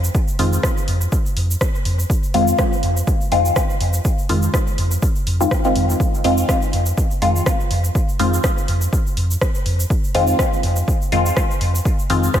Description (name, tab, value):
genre	dub techno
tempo	123 BPM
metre	4/4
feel	swing 56% on 16ths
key	F minor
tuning	A4 = 440 Hz
part	pure sine sub bass	bass	0.0-12.3 s	F2	-19 LUFS	equal	tube saturation, sidechain pumping
part	tube shaker	percussion	0.0-12.4 s	none	-31 LUFS	right 2 dB	none
part	electronic kick drum	drums	0.1-12.4 s	none	-20 LUFS	equal	overdrive
part	filtered dub chord stab	stabs	0.4-12.3 s	Eb3 to F4	-20 LUFS	left 1 dB	chorus, phaser, sidechain pumping, dub echo
part	deep house drum kit	drums	0.4-12.4 s	hi-hat, rim click	-27 LUFS	equal	overdrive, dub echo
room	light reverb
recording	none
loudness	-16 LUFS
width	side -10 dB against mid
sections	0.0-12.4 A section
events	none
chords	0.0 Fm7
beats	| 0.15 0.63 1.12 1.61 | 2.10 2.59 3.07 3.56 | 4.05 4.54 5.03 5.51 | 6.00 6.49 6.98 7.46 | 7.95 8.44 8.93 9.41 | 9.90 10.39 10.88 11.37 | 11.85 12.34